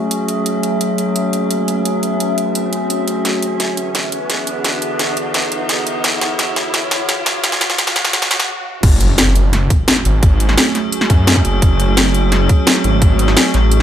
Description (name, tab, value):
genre	dark technical drum and bass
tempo	172 BPM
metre	4/4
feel	straight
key	F# minor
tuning	A4 = 440 Hz
part	metallic inharmonic drone	sustained chords	0.0-13.8 s	E3 to G#4	-21 LUFS	left 1 dB	chorus, built-in reverb, sidechain pumping
part	riser and impact	sound effects	0.8-10.2 s	none	-24 LUFS	equal	none
part	warbly tape-like pad	texture	0.0-13.8 s	D3 to E5	-23 LUFS	right 2 dB	chorus, built-in reverb, phaser, sidechain pumping
part	drum and bass drum kit	drums	0.1-13.8 s	crash cymbal, hi-hat, snare drum	-16 LUFS	equal	overdrive, high-pass filter on hats, studio reverb, high-pass filter on snare, high-pass filter on toms, high-pass filter on cymbals
part	wide detuned saw bass	bass	8.8-13.8 s	F#1 to F#2	-14 LUFS	equal	chorus, overdrive
part	electronic kick drum	drums	8.8-13.1 s	none	-12 LUFS	equal	overdrive, studio reverb
room	light reverb, digital ambience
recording	high-pass filter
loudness	-13 LUFS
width	side -10 dB against mid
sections	0.0-8.8 A section; 8.8-13.8 B section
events	build-up 0.0-8.8; filter sweep on synth drone 0.0-8.8; filter sweep 0.0-8.8; riser 0.8-8.5; drum fill 3.2-8.5; stop 8.5-8.8; drop 8.8-13.8; impact 8.8-10.2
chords	0.0 F#m7; 3.2 E7; 8.8 F#m